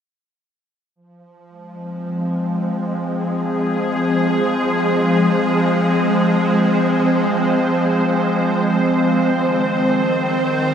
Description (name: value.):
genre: ambient.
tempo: free time.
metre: none.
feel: none.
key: F minor.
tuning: A4 = 437 Hz.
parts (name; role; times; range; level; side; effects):
evolving wavetable pad; sustained chords; 1.8-10.7 s; Eb3 to C5; -16 LUFS; equal; ensemble chorus, built-in reverb.
room: wet huge ambient reverb, RT60 7.4 s.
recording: none.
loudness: -15 LUFS.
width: side -8 dB against mid.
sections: 1.0-10.7 A section.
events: none.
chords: 1.0 Fm; 9.3 Cm.